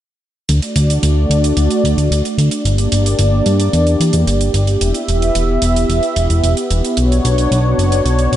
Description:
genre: synthwave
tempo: 111 BPM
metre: 4/4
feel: straight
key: D major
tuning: A4 = 441 Hz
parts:
  - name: warm analog pad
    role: sustained chords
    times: 0.5-8.4 s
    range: A3 to E5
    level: -17 LUFS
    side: equal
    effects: chorus
  - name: fat analog bass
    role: bass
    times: 0.5-8.4 s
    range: E1 to G2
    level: -14 LUFS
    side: equal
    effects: none
  - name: hi-hat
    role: drums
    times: 0.5-8.4 s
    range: none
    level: -23 LUFS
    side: right 4 dB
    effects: none
room: light reverb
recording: nothing above 10.9 kHz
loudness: -12 LUFS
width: side -12 dB against mid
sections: 0.5-8.4 A section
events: filter sweep on analog synth bass 0.5-8.4; filter sweep on analog synth pad 0.5-8.4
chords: 0.5 D; 2.7 Gm; 4.8 Em; 7.0 Bmadd9

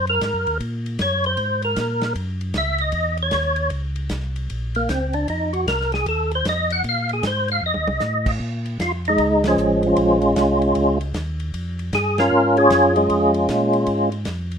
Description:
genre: soul jazz organ trio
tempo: 154 BPM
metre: 4/4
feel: swing 65% on 8ths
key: Bb minor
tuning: A4 = 440 Hz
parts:
  - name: percussive tonewheel organ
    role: melody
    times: 0.0-14.1 s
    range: F3 to Gb5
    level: -18 LUFS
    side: equal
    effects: slow rotary speaker, chorus vibrato
  - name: mellow tonewheel organ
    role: bass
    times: 0.0-14.6 s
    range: A1 to Bb2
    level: -25 LUFS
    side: equal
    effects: overdrive, chorus vibrato, slow rotary speaker
  - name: warm soul drum kit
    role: drums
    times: 0.1-14.6 s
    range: crash cymbal, hi-hat, kick drum, ride cymbal, snare drum, toms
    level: -31 LUFS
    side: equal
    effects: none
room: moderate studio reverb, RT60 0.5 s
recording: rough home demo mix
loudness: -18 LUFS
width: side -7 dB against mid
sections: 0.0-8.4 A section; 8.4-14.6 B section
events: tonewheel organ solo 0.0-8.4; drum fill 7.6-8.0; band accent 9.4, 12.1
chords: 0.0 Ebm; 0.6 Gbadd9; 2.2 Gb7; 5.3 F5; 6.8 Ab69; 7.6 F7; 8.4 Bbm7

